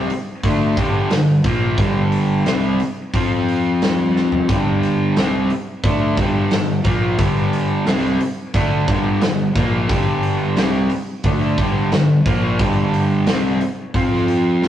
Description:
hard rock; 89 BPM; 4/4; straight; A4 = 443 Hz
overdriven electric guitar; riff; 0.0-14.7 s; G2 to F4; -18 LUFS; equal
fuzz picked electric bass; bass; 0.0-14.7 s; G1 to F2; -27 LUFS; equal; overdrive
big rock drum kit; drums; 0.1-14.7 s; hi-hat, kick drum, snare drum, toms; -20 LUFS; equal
moderate stone room reverb, RT60 1.2 s; rough rehearsal-room recording, cassette tape; -15 LUFS; side -11 dB against mid
0.0-14.7 A section
drum fill 4.2-4.5
0.0 G5; 3.1 F5; 4.5 G5; 13.9 F5
0.45 1.12 | 1.79 2.47 3.14 3.82 | 4.49 5.17 5.84 6.52 | 7.19 7.87 8.54 9.22 | 9.89 10.57 11.24 11.92 | 12.59 13.27 13.94 14.62

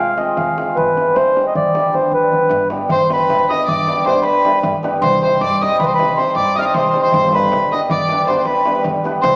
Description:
balkan folk, Balkan wedding band; 312 BPM (eighths); 11/8; straight; G phrygian dominant; A4 = 441 Hz
mellow accordion; melody; 0.0-9.4 s; B4 to F6; -16 LUFS; equal
cimbalom; accompaniment; 0.0-9.3 s; G3 to C5; -19 LUFS; equal
upright bass; bass; 0.0-9.4 s; F1 to G2; -27 LUFS; equal
darbuka; percussion; 0.1-9.3 s; -24 LUFS; equal
rich violin; second line; 2.9-9.4 s; B4 to F5; -18 LUFS; equal
wet scoring stage reverb, RT60 1.7 s; heard from further back in the room, small speaker sound; -13 LUFS; side -29 dB against mid
0.0-2.9 A section; 2.9-9.4 B section
drum fill 1.9-2.9
0.0 Fm; 0.8 G; 5.0 Cm; 7.1 G
0.17 0.37 0.56 | 0.76 0.95 1.15 1.34 1.54 1.73 1.93 2.12 2.31 2.51 2.70 | 2.89 3.09 3.28 3.47 3.67 3.86 4.05 4.24 4.44 4.63 4.82 | 5.01 5.21 5.40 5.59 5.78 5.97 6.17 6.36 6.55 6.74 6.93 | 7.13 7.32 7.51 7.70 7.89 8.08 8.28 8.47 8.66 8.85 9.04 | 9.23

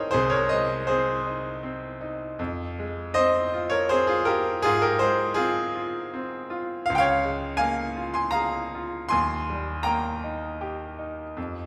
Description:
classical, romantic nocturne for solo piano; 80 BPM; 3/4; rubato; A4 = 440 Hz
bright concert grand piano; solo; 0.0-11.7 s; C2 to C6; -26 LUFS; equal
wet recital hall reverb, RT60 1.6 s; recorded in a church or concert hall; -26 LUFS; mono
0.0-11.7 A section
0.1 Ab/C; 2.4 Fm; 4.7 Fm/Ab; 6.9 Bbm7/Db; 9.1 Eb
| 0.12 0.88 1.62 | 2.39 3.16 3.92 | 4.66 5.38 6.11 | 6.87 7.60 8.34 | 9.12 9.87 10.61 | 11.37

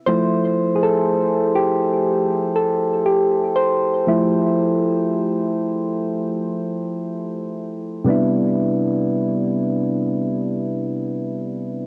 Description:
R&B; 60 BPM; 4/4; swing 54% on 16ths; C major; A4 = 440 Hz
soft electric-piano-like synth keys; solo; 0.1-11.9 s; C3 to C5; -20 LUFS; equal; chorus, cassette tape, tape echo
moderate booth ambience, RT60 0.3 s; home recording on cassette; -20 LUFS; mono
0.0-8.1 A section; 8.1-11.9 B section
synth keys solo 0.0-8.1
0.0 Fmaj9; 8.1 Cmaj9
| 0.07 1.07 2.07 3.07 | 4.07 5.07 6.07 7.07 | 8.07 9.07 10.07 11.07

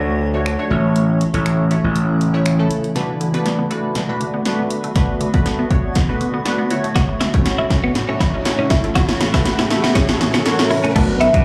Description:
dance-pop; 120 BPM; 4/4; straight; B minor; A4 = 439 Hz
funky polysynth comp; accompaniment; 0.0-11.4 s; A3 to E5; -25 LUFS; equal; chorus, sidechain pumping, plate reverb, slapback echo
granular cloud pad; sustained chords; 0.0-11.4 s; A2 to C#5; -27 LUFS; equal; built-in reverb, sidechain pumping
gritty slap bass; bass; 0.0-2.7, 11.0-11.4 s; A1 to B2; -19 LUFS; equal; overdrive, sidechain pumping
punchy analog drum machine; drums; 0.5-11.4 s; crash cymbal, finger snaps, hi-hat, kick drum, snare drum; -21 LUFS; equal; overdrive
unison pluck; arpeggios; 3.0-10.9 s; A2 to C#4; -30 LUFS; equal; sidechain pumping, plate reverb, slapback echo, tape echo
riser; sound effects; 5.8-11.0 s; -30 LUFS; equal
twelve-string electric guitar; riff; 7.0-11.4 s; A3 to F#4; -24 LUFS; equal; analog chorus, slapback echo
mallet-like synth pluck; melody; 11.2-11.3 s; E5; -16 LUFS; equal; chorus, plate reverb, slapback echo
moderate club reverb, RT60 0.8 s; live gig heard through the venue's PA, club reverb; -18 LUFS; mono
0.0-3.0 A section; 3.0-11.0 B section
build-up 3.0-11.0; drum fill 3.0-11.0
0.0 Dmaj7; 0.7 A; 3.0 Bm7; 6.7 F#m7/A
0.46 | 0.96 1.46 1.96 2.46 | 2.96 3.46 3.96 4.46 | 4.96 5.46 5.96 6.46 | 6.96 7.46 7.96 8.46 | 8.96 9.46 9.96 10.46 | 10.96

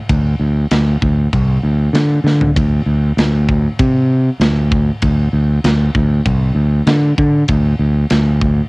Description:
heavy metal; 97 BPM; 4/4; straight; A4 = 439 Hz
growling fingered electric bass; bass; 0.1-8.6 s; C2 to D3; -12 LUFS; equal; overdrive
tight metal drum kit; drums; 0.1-8.6 s; kick drum, ride cymbal, snare drum, toms; -19 LUFS; equal
little or no reverb; home recording on cassette; -12 LUFS; side -28 dB against mid
0.0-8.7 A section
drum fill 2.3-2.6
| 0.09 0.71 1.32 1.94 | 2.56 3.18 3.79 4.41 | 5.03 5.64 6.26 6.87 | 7.49 8.11

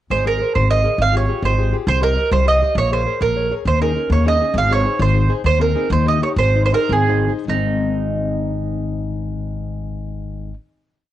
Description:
italian folk, Italian serenade; 95-137 BPM (dotted quarters); 6/8; rubato; Ab major; A4 = 438 Hz
mandolin; melody; 0.1-10.5 s; Eb4 to F5; -19 LUFS; right 4 dB; cassette tape
nylon-string guitar; accompaniment; 0.1-10.6 s; Ab2 to Eb5; -24 LUFS; left 8 dB; cassette tape
upright bass; bass; 0.1-10.5 s; Ab1 to Eb2; -19 LUFS; equal
light reverb, studio ambience; home recording on cassette, lossy compression artefacts; -15 LUFS; side -12 dB against mid
0.1-7.5 A section; 7.5-10.0 final chord
slowing down 5.4-7.5
0.1 Abadd9; 1.0 Fmadd9/Ab; 1.9 Cm; 2.8 Bbm7; 3.7 Eb7sus4; 4.6 Ab; 5.4 Ab/Eb; 5.9 Eb; 6.4 Ab
| 0.10 0.55 | 1.00 1.44 | 1.88 2.32 | 2.76 3.21 | 3.66 4.11 | 4.56 5.00 | 5.44 5.90 | 6.37 6.89 | 7.48 8.11 | 8.72 9.33

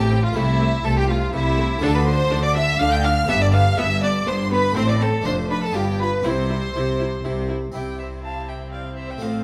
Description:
classical, baroque-style concerto movement with solo episodes; 122 BPM; 3/4; straight; C major; A4 = 440 Hz
rich chamber violin section; melody; 0.0-9.4 s; E4 to G6; -32 LUFS; equal
warm violin; melody; 0.0-9.4 s; E4 to A5; -28 LUFS; equal
rich chamber violin section; second line; 0.0-9.4 s; E4 to G5; -29 LUFS; equal
harpsichord; accompaniment; 0.0-9.4 s; F2 to G4; -31 LUFS; equal
rich chamber double bass section; bass; 0.0-9.4 s; F1 to D2; -26 LUFS; equal
warm studio cello section; bass; 0.0-9.4 s; F2 to D3; -28 LUFS; equal
clear studio viola section; accompaniment; 0.1-9.4 s; A3 to F4; -32 LUFS; equal
moderate recital hall reverb, RT60 1.4 s; -21 LUFS; mono
0.0-7.7 A section; 7.7-9.4 B section
0.4 Am/C; 1.8 Dm; 3.3 G; 4.8 Am; 5.3 Dm7/F; 5.8 G7; 6.2 C
| 0.36 0.85 1.33 | 1.82 2.31 2.80 | 3.29 3.78 4.27 | 4.76 5.26 5.75 | 6.25 6.75 7.25 | 7.74 8.23 8.73 | 9.22

